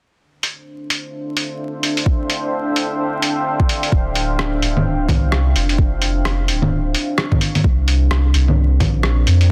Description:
future garage; 129 BPM; 4/4; swing 60% on 16ths; D minor; A4 = 441 Hz
deep dark ambient pad; sustained chords; 0.7-9.5 s; C4 to G5; -25 LUFS; equal; chorus, built-in reverb, vintage 12-bit sampler grit, sidechain pumping
lo-fi sampler-style drum kit; drums; 0.4-9.5 s; bongos, hi-hat, rim click; -22 LUFS; equal; overdrive
electronic kick drum; drums; 2.1-8.9 s; -19 LUFS; equal; overdrive
soft dub sub bass; bass; 3.9-9.5 s; D1 to F2; -18 LUFS; equal; sidechain pumping
light reverb; dense, heavily limited modern master, vinyl crackle; -18 LUFS; mono
0.2-3.9 A section; 3.9-9.5 B section
0.2 Dm11; 7.6 C9sus4
| 0.20 0.67 1.13 1.60 | 2.06 2.53 2.99 3.46 | 3.92 4.39 4.85 5.32 | 5.78 6.25 6.71 7.18 | 7.64 8.11 8.57 9.04 | 9.50

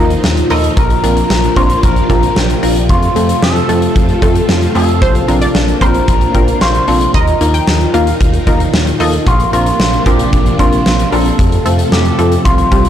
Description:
synth-pop; 113 BPM; 4/4; straight; A4 = 439 Hz
electric guitar with an envelope filter; melody; 0.0-12.9 s; F4 to C5; -18 LUFS; left 1 dB; spring reverb, digital delay
funky polysynth comp; accompaniment; 0.0-12.9 s; G3 to Bb4; -18 LUFS; left 1 dB; chorus
string machine, full ensemble; sustained chords; 0.0-12.9 s; Bb2 to A4; -17 LUFS; equal; ensemble chorus
smooth synth bass; bass; 0.0-12.9 s; Bb1 to F2; -16 LUFS; equal; tube saturation
huge arena drum kit; drums; 0.1-12.9 s; hi-hat, kick drum, snare drum; -14 LUFS; equal
analog pluck; second line; 0.5-0.6, 5.0-9.1 s; C5 to G5; -21 LUFS; right 2 dB; chorus, digital delay
light reverb; blown-out, overdriven recording, overdrive; -9 LUFS; side -10 dB against mid
0.0-12.9 A section
0.0 Ebsus2; 0.8 Bbadd9; 2.9 F; 5.0 Bbadd9; 7.1 Ebsus2; 9.3 Bbadd9; 11.4 F
0.24 | 0.77 1.30 1.83 2.36 | 2.89 3.42 3.96 4.49 | 5.02 5.55 6.08 6.61 | 7.14 7.67 8.20 8.73 | 9.27 9.80 10.33 10.86 | 11.39 11.92 12.45

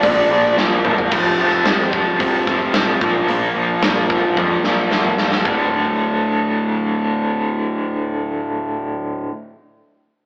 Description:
hard rock; 110 BPM; 4/4; straight; D minor; A4 = 439 Hz
bluesy overdriven lead guitar; melody; 0.0-0.5 s; D5; -16 LUFS; equal; distortion
octave-fuzz lead guitar; second line; 0.0-0.5 s; D4; -29 LUFS; equal
dark analog pad; sustained chords; 0.0-1.1 s; barely audible
cranked stack guitar; riff; 0.0-9.3 s; D2 to Bb3; -19 LUFS; equal; overdrive, tremolo
overdriven semi-hollow guitar; riff; 0.0-9.3 s; D2 to Bb3; -22 LUFS; equal
growling picked electric bass; bass; 0.0-9.3 s; D1 to F2; -26 LUFS; equal; overdrive
big rock drum kit; drums; 0.0-5.6 s; crash cymbal, hi-hat, kick drum, snare drum, toms; -19 LUFS; equal
moderate stone room reverb, RT60 1.4 s; rough rehearsal-room recording, warm saturation, AM radio sound; -15 LUFS; side -34 dB against mid
0.0-1.1 A section; 1.1-5.5 B section; 5.5-9.8 C section
drum fill 0.6-1.1, 4.4-5.5
0.0 Bb; 1.1 F5; 3.0 Bb5; 5.5 D5
0.04 0.58 | 1.12 1.66 2.20 2.74 | 3.29 3.83 4.37 4.92 | 5.46 6.00 6.55 7.09 | 7.64 8.19 8.73 9.28

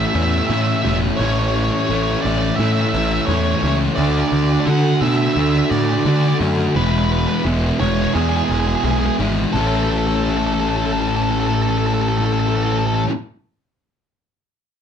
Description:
post-rock; 86 BPM; 4/4; straight; A major; A4 = 440 Hz
octave-fuzz lead guitar; melody; 0.0-13.0 s; G#4 to F#5; -23 LUFS; equal; distortion
thick fuzz guitar; riff; 0.0-13.1 s; A2 to A4; -18 LUFS; equal; distortion
fuzz picked electric bass; bass; 0.0-13.0 s; E1 to D3; -20 LUFS; equal; overdrive
moderate studio ambience, RT60 0.5 s; band playing live in one room; -16 LUFS; side -8 dB against mid
0.0-9.5 A section; 9.5-12.3 B section
0.0 A; 4.0 Dadd9; 6.8 E; 9.5 A
0.50 | 1.20 1.89 2.59 3.29 | 3.98 4.68 5.37 6.07 | 6.76 7.46 8.15 8.85 | 9.54 10.24 10.93 11.63

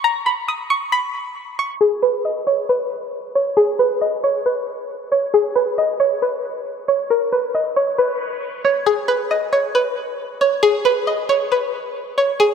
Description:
hip hop; 136 BPM; 4/4; half-time; A4 = 441 Hz
string-like resonator pluck; solo; 0.0-12.5 s; G#4 to D#6; -17 LUFS; equal; chorus, diffuse ambient delay
wet plate reverb, RT60 3.5 s; dreamy mix soaked in reverb, low-pass filter; -17 LUFS; side -7 dB against mid
0.0-1.8 A section; 1.8-8.9 B section; 8.9-12.5 C section
filter sweep 1.8-8.9
| 0.04 0.48 0.93 1.37 | 1.81 2.25 2.69 3.13 | 3.57 4.01 4.46 4.90 | 5.34 5.78 6.22 6.66 | 7.10 7.54 7.99 8.43 | 8.87 9.31 9.75 10.19 | 10.63 11.07 11.51 11.96 | 12.40

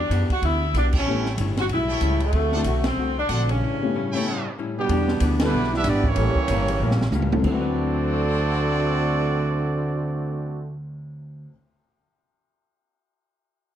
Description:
jazz, big band swing; 188 BPM; 4/4; swing 61% on 8ths; D mixolydian; A4 = 440 Hz
warm saxophone section; melody; 0.0-4.5 s; A3 to F#4; -25 LUFS; left 1 dB
upright bass; bass; 0.0-11.5 s; G1 to F#2; -24 LUFS; right 1 dB
archtop guitar, miked and amplified; accompaniment; 0.1-11.6 s; A2 to B4; -30 LUFS; left 5 dB
open jazz drum kit; drums; 0.1-7.5 s; crash cymbal, hi-hat, kick drum, ride cymbal, snare drum, toms; -28 LUFS; right 1 dB
brilliant trumpet section; stabs; 0.9-4.5 s; D4 to G5; -32 LUFS; right 2 dB
warm upright piano; accompaniment; 1.1-11.5 s; D2 to B4; -29 LUFS; left 5 dB
warm trombone section; second line; 3.5-10.8 s; G2 to F#4; -27 LUFS; right 3 dB
clear trumpet section; melody; 4.8-10.8 s; G3 to E5; -27 LUFS; right 2 dB
moderate large studio reverb, RT60 1.0 s; dark, warm production; -20 LUFS; side -10 dB against mid
0.0-4.9 A section; 4.9-7.4 B section; 7.4-10.0 C section
band accent 0.9, 2.8, 5.4; break 3.6-4.9; drum fill 6.8-7.4
0.0 Em7; 1.1 A7; 2.3 D7; 3.6 A7; 4.9 Em7; 6.2 A7b9; 7.4 D13
0.11 0.43 0.75 | 1.07 1.39 1.70 2.02 | 2.34 2.66 2.98 3.30 | 3.62 3.94 4.26 4.58 | 4.89 5.21 5.53 5.85 | 6.17 6.49 6.81 7.12 | 7.44 7.76 8.08 8.40 | 8.72 9.04 9.36 9.68

